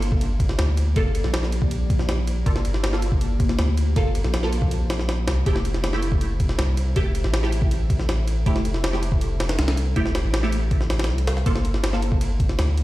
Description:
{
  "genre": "drum and bass, jungle",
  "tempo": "160 BPM",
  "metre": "4/4",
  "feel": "straight",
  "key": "G dorian",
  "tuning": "A4 = 441 Hz",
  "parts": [
    { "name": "granular cloud pad", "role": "sustained chords", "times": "0.0-12.8 s", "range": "Bb3 to G5", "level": "-34 LUFS", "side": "left 2 dB", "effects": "built-in reverb" },
    { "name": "filtered dub chord stab", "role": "stabs", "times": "0.0-12.8 s", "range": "A3 to A4", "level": "-30 LUFS", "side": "right 2 dB", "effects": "phaser, ensemble chorus, cassette tape, dub echo" },
    { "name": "soft dub sub bass", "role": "bass", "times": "0.0-12.8 s", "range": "F1 to D2", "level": "-23 LUFS", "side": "equal", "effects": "none" },
    { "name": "jungle sampler-style drum kit", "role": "drums", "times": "0.0-12.8 s", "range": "kick drum, ride cymbal, snare drum", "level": "-23 LUFS", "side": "equal", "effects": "none" }
  ],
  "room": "light reverb",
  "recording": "played on a big sound system in a bare room, stone room reverb",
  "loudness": "-20 LUFS",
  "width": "side -17 dB against mid",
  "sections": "0.0-12.8 A section",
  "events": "none",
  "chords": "0.0 Gm7; 5.5 Fmaj7; 11.5 Gm7",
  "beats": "0.21 0.59 | 0.96 1.34 1.71 2.09 | 2.46 2.84 3.21 3.59 | 3.96 4.34 4.71 5.09 | 5.46 5.84 6.21 6.59 | 6.96 7.34 7.71 8.09 | 8.46 8.84 9.21 9.59 | 9.96 10.34 10.71 11.09 | 11.46 11.84 12.21 12.59"
}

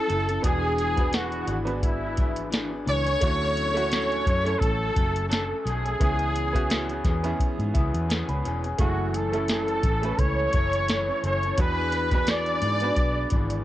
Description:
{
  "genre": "indie pop, bedroom pop",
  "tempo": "86 BPM",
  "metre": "4/4",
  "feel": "swing 55% on 16ths",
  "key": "unclear",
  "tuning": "A4 = 441 Hz",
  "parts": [
    { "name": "clear trumpet", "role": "melody", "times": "0.0-13.6 s", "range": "E4 to D5", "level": "-27 LUFS", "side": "equal", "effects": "ensemble chorus, cassette tape" },
    { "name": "bright upright piano", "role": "accompaniment", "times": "0.0-13.6 s", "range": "A3 to B5", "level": "-32 LUFS", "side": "right 3 dB", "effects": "cassette tape, plate reverb" },
    { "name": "electric guitar through a small old amp", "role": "accompaniment", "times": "0.0-13.6 s", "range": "F#2 to A4", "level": "-33 LUFS", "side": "left 4 dB", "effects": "wide subtle chorus, warbly pitch drift, cassette tape" },
    { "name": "vintage muted fingered electric bass", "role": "bass", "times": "0.1-13.6 s", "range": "E1 to G#2", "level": "-29 LUFS", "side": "equal", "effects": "none" },
    { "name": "soft vintage rhythm box", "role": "drums", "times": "0.1-13.6 s", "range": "hi-hat, kick drum, snare drum", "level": "-25 LUFS", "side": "equal", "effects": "vintage 12-bit sampler grit, cassette tape" }
  ],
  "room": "moderate booth ambience, RT60 0.2 s",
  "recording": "home recording on cassette",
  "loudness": "-22 LUFS",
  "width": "side -14 dB against mid",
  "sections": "0.0-13.6 A section",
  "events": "upright piano fill 7.4-8.8",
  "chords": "0.4 E7; 3.2 Dmaj7; 6.0 C#m7; 8.8 F#m7; 11.6 E7",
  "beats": "| 0.44 1.13 1.83 2.52 | 3.22 3.91 4.61 5.30 | 6.00 6.70 7.39 8.09 | 8.79 9.48 10.18 10.88 | 11.57 12.27 12.97"
}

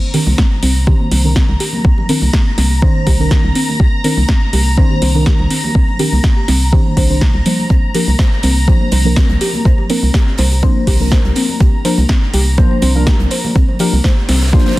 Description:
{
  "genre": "deep house",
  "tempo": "123 BPM",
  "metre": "4/4",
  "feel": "swing 54% on 16ths",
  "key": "C minor",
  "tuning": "A4 = 441 Hz",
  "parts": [
    { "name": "deep mellow chord stab", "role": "stabs", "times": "0.0-14.8 s", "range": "Eb3 to C5", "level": "-19 LUFS", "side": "equal", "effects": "chorus, phaser, sidechain pumping, tape echo" },
    { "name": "string machine, violins", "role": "texture", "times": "0.0-14.8 s", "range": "Bb5", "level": "-26 LUFS", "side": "left 1 dB", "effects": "ensemble chorus" },
    { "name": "soft round pluck", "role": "arpeggios", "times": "0.1-14.6 s", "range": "C3 to C5", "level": "-23 LUFS", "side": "equal", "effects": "chorus, cassette tape, sidechain pumping, tape echo" },
    { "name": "deep house drum kit", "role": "drums", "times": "0.1-14.4 s", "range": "hi-hat, snare drum", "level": "-21 LUFS", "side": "equal", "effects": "overdrive, studio reverb" },
    { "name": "organ-like FM bass", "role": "bass", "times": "0.3-14.6 s", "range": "C2", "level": "-14 LUFS", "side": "equal", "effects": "sidechain pumping" },
    { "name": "congas", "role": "percussion", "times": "0.3-14.8 s", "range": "none", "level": "-25 LUFS", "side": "left 1 dB", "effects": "none" },
    { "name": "electronic kick drum", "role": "drums", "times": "0.4-14.6 s", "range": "none", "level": "-12 LUFS", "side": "equal", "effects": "overdrive, studio reverb" },
    { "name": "gated 80s drum kit", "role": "drums", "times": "7.7-14.8 s", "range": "hi-hat, snare drum", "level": "-29 LUFS", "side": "right 2 dB", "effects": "high-pass filter on hats, studio reverb, high-pass filter on snare, high-pass filter on room" }
  ],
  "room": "studio ambience",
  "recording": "dense, heavily limited modern master, vinyl crackle",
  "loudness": "-10 LUFS",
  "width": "side -18 dB against mid",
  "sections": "0.0-14.8 A section",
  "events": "filter sweep on synth stab 0.0-14.8; filter sweep on synth arpeggio sound 0.0-14.8",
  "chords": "0.0 Cm9; 7.7 Bb/C",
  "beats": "0.38 0.87 1.36 | 1.85 2.33 2.82 3.31 | 3.80 4.29 4.77 5.26 | 5.75 6.24 6.73 7.21 | 7.70 8.19 8.68 9.16 | 9.65 10.14 10.63 11.12 | 11.60 12.09 12.58 13.07 | 13.55 14.04 14.53"
}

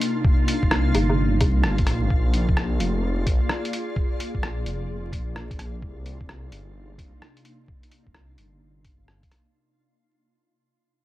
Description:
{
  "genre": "future garage",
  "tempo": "129 BPM",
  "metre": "4/4",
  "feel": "swing 65% on 16ths",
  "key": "C minor",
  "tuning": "A4 = 440 Hz",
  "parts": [
    { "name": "ethereal airy pad", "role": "sustained chords", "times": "0.0-9.5 s", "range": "C3 to D5", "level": "-29 LUFS", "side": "equal", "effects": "ensemble chorus, built-in reverb, sidechain pumping" },
    { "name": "lo-fi sampler-style drum kit", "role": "drums", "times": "0.0-9.4 s", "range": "hi-hat, rim click, woodblock", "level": "-27 LUFS", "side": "left 1 dB", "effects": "none" },
    { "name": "backwards swelling texture", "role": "texture", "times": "0.0-9.6 s", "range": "F4 to F5", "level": "-36 LUFS", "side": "left 1 dB", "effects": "built-in reverb" },
    { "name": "electronic kick drum", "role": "drums", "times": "0.2-9.3 s", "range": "none", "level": "-23 LUFS", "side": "equal", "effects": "none" },
    { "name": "swelling detuned saw bass", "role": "bass", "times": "0.6-9.2 s", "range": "F1 to C2", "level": "-25 LUFS", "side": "equal", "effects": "sidechain pumping" }
  ],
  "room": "little or no reverb",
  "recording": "dry, gritty hardware recording, vinyl crackle",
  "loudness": "-20 LUFS",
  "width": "side -16 dB against mid",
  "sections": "0.0-9.5 A section",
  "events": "fade-out 0.0-9.5",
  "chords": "0.0 Cm9; 2.1 Bb7; 5.8 Cm9",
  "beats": "| 0.24 0.71 1.17 1.64 | 2.10 2.57 3.03 3.50 | 3.96 4.43 4.89 5.36 | 5.82 6.29 6.75 7.22 | 7.68 8.15 8.61 9.08"
}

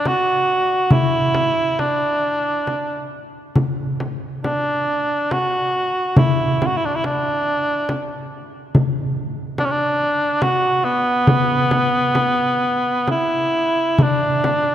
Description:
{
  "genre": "caucasian folk, Caucasian lament",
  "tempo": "69 BPM",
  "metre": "3/4",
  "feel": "rubato",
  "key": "unclear",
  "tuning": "A4 = 439 Hz",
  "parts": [
    { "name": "warm cor anglais", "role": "melody", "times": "0.0-14.7 s", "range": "B3 to F#4", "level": "-18 LUFS", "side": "right 1 dB", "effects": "none" },
    { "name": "frame drum", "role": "percussion", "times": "0.1-14.6 s", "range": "none", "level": "-20 LUFS", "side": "left 1 dB", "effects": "none" }
  ],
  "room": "wet church reverb, RT60 3.5 s",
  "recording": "none",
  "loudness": "-17 LUFS",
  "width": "side -11 dB against mid",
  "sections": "0.0-14.0 A section",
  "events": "none",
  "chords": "none",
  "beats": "0.06 | 0.91 1.78 2.66 | 3.54 4.43 5.29 | 6.16 7.03 7.88 | 8.73 9.58 10.41 | 11.26 12.15 13.07 | 13.98"
}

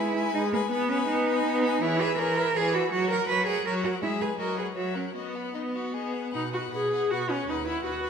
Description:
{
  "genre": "quick classical-period movement for string quartet",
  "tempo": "162 BPM",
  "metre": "3/4",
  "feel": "rubato",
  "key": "B major",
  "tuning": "A4 = 440 Hz",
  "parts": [
    { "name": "rich violin", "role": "melody", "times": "0.0-8.1 s", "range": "C#5 to G#5", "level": "-36 LUFS", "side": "left 9 dB", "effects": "none" },
    { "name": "rich violin", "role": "second line", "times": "0.0-8.1 s", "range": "D#4 to C#5", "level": "-34 LUFS", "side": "left 5 dB", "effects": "none" },
    { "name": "rich viola", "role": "accompaniment", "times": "0.0-8.1 s", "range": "E3 to G#4", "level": "-28 LUFS", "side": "equal", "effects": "none" },
    { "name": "rich cello", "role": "bass", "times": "0.0-8.1 s", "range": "D#2 to B4", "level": "-29 LUFS", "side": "right 5 dB", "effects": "none" }
  ],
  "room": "wet concert hall reverb, RT60 1.9 s",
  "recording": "minimal, uncompressed stereo recording",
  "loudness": "-25 LUFS",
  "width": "side -7 dB against mid",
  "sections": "0.0-6.3 A section; 6.3-8.1 A section",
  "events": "none",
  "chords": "0.0 G#m; 0.7 G#m/B; 1.8 C#m7/E; 2.9 F#; 4.0 E/G#; 4.4 B/F#; 4.8 F#7; 5.2 B; 6.3 B5; 7.5 B/D#",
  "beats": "0.34 | 0.71 1.08 1.45 | 1.82 2.19 2.56 | 2.92 3.29 3.66 | 4.03 4.40 4.78 | 5.17 5.56 5.95 | 6.34 6.73 7.11 | 7.48 7.85"
}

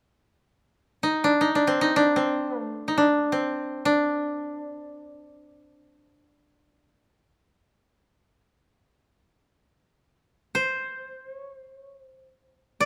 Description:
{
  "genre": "japanese traditional",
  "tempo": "free time",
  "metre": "none",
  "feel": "none",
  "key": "unclear",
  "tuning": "A4 = 440 Hz",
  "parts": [
    { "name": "koto", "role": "melody", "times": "1.0-12.9 s", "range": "C4 to D5", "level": "-25 LUFS", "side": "equal", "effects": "none" }
  ],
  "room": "light reverb",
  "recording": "close, detailed microphones",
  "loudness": "-24 LUFS",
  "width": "mono",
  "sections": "0.0-10.6 A section; 10.6-12.9 B section",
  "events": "none",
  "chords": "none",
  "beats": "free time"
}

